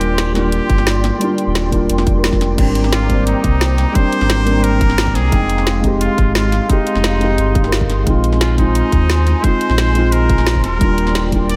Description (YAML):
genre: liquid drum and bass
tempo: 175 BPM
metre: 4/4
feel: straight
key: unclear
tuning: A4 = 441 Hz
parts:
  - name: trumpet with straight mute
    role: melody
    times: 0.0-11.6 s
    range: Eb4 to D5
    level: -26 LUFS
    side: equal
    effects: diffuse ambient delay
  - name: felt-muted upright piano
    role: accompaniment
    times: 0.0-11.6 s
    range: G3 to G5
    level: -21 LUFS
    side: equal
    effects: analog delay
  - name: airy breathy pad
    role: sustained chords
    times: 0.0-11.6 s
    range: Ab3 to D6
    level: -27 LUFS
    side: equal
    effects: chorus, sidechain pumping
  - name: sub bass with octave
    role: bass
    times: 0.0-11.6 s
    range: Eb1 to Eb2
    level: -19 LUFS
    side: equal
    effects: none
  - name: drum and bass drum kit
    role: drums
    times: 0.0-11.6 s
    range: crash cymbal, hi-hat, snare drum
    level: -24 LUFS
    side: equal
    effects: none
  - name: electronic kick drum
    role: drums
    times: 0.7-11.4 s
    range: none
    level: -18 LUFS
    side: equal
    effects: none
room: moderate plate reverb, RT60 1.9 s, digital ambience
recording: dreamy mix soaked in reverb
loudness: -15 LUFS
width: mono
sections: 0.0-2.6 A section; 2.6-11.6 A section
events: drop 0.0-2.6, 2.6-11.6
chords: 0.0 Ebmaj7; 2.6 Abmaj9#11; 5.3 Fm7; 8.1 Bb9sus4; 10.6 Ebmaj7